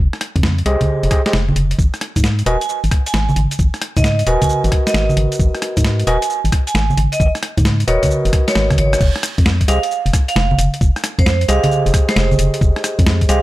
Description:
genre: UK garage, two-step garage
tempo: 133 BPM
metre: 4/4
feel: swing 66% on 16ths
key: F minor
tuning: A4 = 445 Hz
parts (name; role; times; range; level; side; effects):
- organ-like FM bass; bass; 0.0-13.4 s; Eb1 to Ab2; -16 LUFS; equal; none
- boom bap sampler-style drum kit; drums; 0.1-13.4 s; congas, crash cymbal, hi-hat, rim click, shaker, snare drum; -19 LUFS; right 1 dB; none
- electronic kick drum; drums; 0.4-13.3 s; none; -15 LUFS; equal; none
- overdriven tine electric piano; stabs; 0.7-13.4 s; Gb4 to Eb5; -20 LUFS; equal; tape echo
- vibraphone with hard mallets; melody; 2.5-13.4 s; C5 to Ab5; -21 LUFS; right 3 dB; tape echo
room: little or no reverb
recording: none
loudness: -13 LUFS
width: side -16 dB against mid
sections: 0.0-9.0 A section; 9.0-13.4 B section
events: drum fill 8.6-9.0; band accent 8.9; drop 9.0-13.4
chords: 0.0 Fm9; 1.8 Abm9; 9.0 Fm9

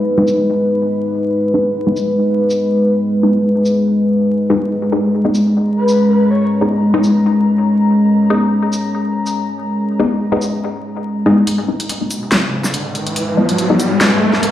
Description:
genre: deep dubstep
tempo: 142 BPM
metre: 4/4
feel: swing 54% on 16ths, half-time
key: G# minor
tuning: A4 = 440 Hz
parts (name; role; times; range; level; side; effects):
- deep dark ambient pad; sustained chords; 0.0-14.5 s; G#3 to A#5; -14 LUFS; equal; chorus, built-in reverb
- filtered dub chord stab; stabs; 0.0-13.9 s; G#3 to D#4; -18 LUFS; left 1 dB; phaser, dub echo
- deep house drum kit; drums; 0.3-14.5 s; hi-hat, shaker, snare drum; -19 LUFS; equal; high-pass filter on hats, low-pass filter on hats, high-pass filter on perc, low-pass filter on perc, high-pass filter on snare, low-pass filter on snare, high-pass filter on cymbals, low-pass filter on cymbals
- breathy flute-like synth lead; melody; 5.8-6.5 s; B4 to C#5; -21 LUFS; left 3 dB; ensemble chorus, dub echo
- riser; sound effects; 12.1-14.5 s; none; -17 LUFS; equal; none
room: wet echo chamber reverb, RT60 1.6 s, digital ambience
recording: played on a big sound system in a bare room, large studio reverb, vinyl crackle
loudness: -13 LUFS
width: side -12 dB against mid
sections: 0.0-11.5 A section; 11.5-14.5 B section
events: filter sweep on synth stab 0.0-11.5, 11.5-14.5; build-up 11.5-14.5; filter sweep on ambient pad 11.5-14.5; riser 12.1-14.5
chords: 0.0 G#m

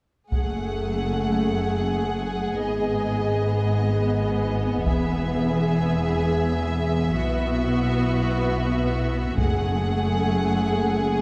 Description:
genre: cinematic, epic orchestral film score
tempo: free time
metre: none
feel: none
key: F# dorian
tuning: A4 = 440 Hz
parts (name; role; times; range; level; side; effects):
- rich symphonic violin section; melody; 0.3-11.2 s; D#5 to F#5; -35 LUFS; equal; none
- clear symphonic violin section; second line; 0.3-11.2 s; F#4 to G#4; -33 LUFS; equal; none
- warm symphonic viola section; accompaniment; 0.3-11.2 s; A3 to B3; -31 LUFS; equal; none
- mellow French horn section; sustained chords; 0.3-11.2 s; A3 to G#4; -32 LUFS; equal; none
- dark symphonic cello section; bass; 0.3-11.2 s; E2 to B2; -30 LUFS; equal; none
- rich symphonic double bass section; bass; 0.3-11.2 s; E1 to B1; -29 LUFS; equal; none
- solo taiko drums; drums; 0.3-1.4, 4.9-5.9, 9.4-10.5 s; none; -30 LUFS; equal; none
- timpani; percussion; 9.4-10.2 s; F#2; -34 LUFS; equal; none
room: wet concert hall reverb, RT60 2.2 s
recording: dark, warm production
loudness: -24 LUFS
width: mono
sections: 0.3-11.2 A section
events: build-up 0.3-11.2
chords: 0.3 F#madd9; 2.6 G#m; 4.9 E; 7.1 Bsus4; 9.4 F#madd9

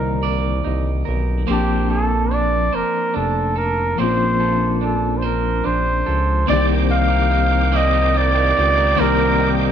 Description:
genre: slow six-eight R&B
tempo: 48 BPM (dotted quarters)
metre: 6/8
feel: straight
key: C dorian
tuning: A4 = 440 Hz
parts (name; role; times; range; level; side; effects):
- warm flugelhorn; melody; 0.0-9.6 s; G4 to F5; -20 LUFS; right 1 dB; slapback echo
- electric guitar at the edge of break-up; second line; 0.0-9.7 s; Bb3 to D5; -24 LUFS; right 14 dB; none
- reed electric piano; accompaniment; 0.0-9.7 s; D3 to A5; -24 LUFS; left 14 dB; fast tremolo
- smooth synth bass; bass; 0.0-9.7 s; F1 to Db2; -20 LUFS; equal; none
- bright tonewheel organ; sustained chords; 6.5-9.7 s; C5 to D6; -26 LUFS; right 1 dB; chorus vibrato, fast rotary speaker
- warm horn section; stabs; 7.7-9.7 s; G3 to Eb4; -28 LUFS; right 12 dB; none
room: light reverb, small room ambience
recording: 1960s-style stereo with parts hard left and right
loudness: -16 LUFS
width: side -8 dB against mid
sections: 0.0-6.5 A section; 6.5-9.7 B section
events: none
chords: 0.0 Cm9; 1.5 Bbmaj9; 6.5 Cm9

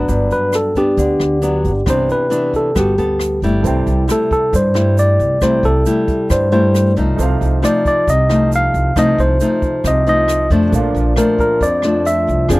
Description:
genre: bossa nova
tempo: 135 BPM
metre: 4/4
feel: straight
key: G major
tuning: A4 = 440 Hz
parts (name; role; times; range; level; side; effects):
- bright tine electric piano; melody; 0.0-12.5 s; G4 to F5; -16 LUFS; equal; none
- nylon-string guitar; accompaniment; 0.0-12.6 s; F2 to A4; -18 LUFS; left 2 dB; none
- upright bass; bass; 0.0-12.6 s; F1 to G2; -17 LUFS; equal; none
- jazz brush drum kit; drums; 0.1-12.6 s; hi-hat, kick drum, rim click; -23 LUFS; equal; none
- egg shaker; percussion; 0.1-12.6 s; none; -35 LUFS; right 18 dB; none
- warm grand piano; accompaniment; 3.6-12.6 s; Bb3 to G5; -25 LUFS; right 5 dB; none
room: little or no reverb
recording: dry, close 1970s-style studio recording, faint mains hum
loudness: -12 LUFS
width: side -20 dB against mid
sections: 0.0-3.6 A section; 3.6-12.6 B section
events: none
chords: 0.1 Gmaj7; 1.9 Cmaj9; 2.8 Gmaj9; 3.6 C6; 7.2 F7/C; 10.7 Bbmaj7

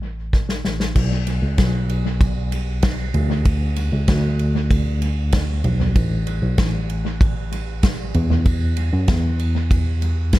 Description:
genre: piano-driven pop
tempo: 96 BPM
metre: 4/4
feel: straight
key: A major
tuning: A4 = 440 Hz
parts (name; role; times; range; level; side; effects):
- tine electric piano; bass; 0.0-10.4 s; A1 to F#2; -20 LUFS; equal; medium tremolo
- unplugged drum kit; drums; 0.3-10.4 s; crash cymbal, kick drum, ride cymbal, snare drum, toms; -20 LUFS; equal; analog delay
room: little or no reverb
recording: echo-heavy mix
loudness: -17 LUFS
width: side -16 dB against mid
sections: 1.0-10.4 A section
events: drum fill 0.3-1.0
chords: none

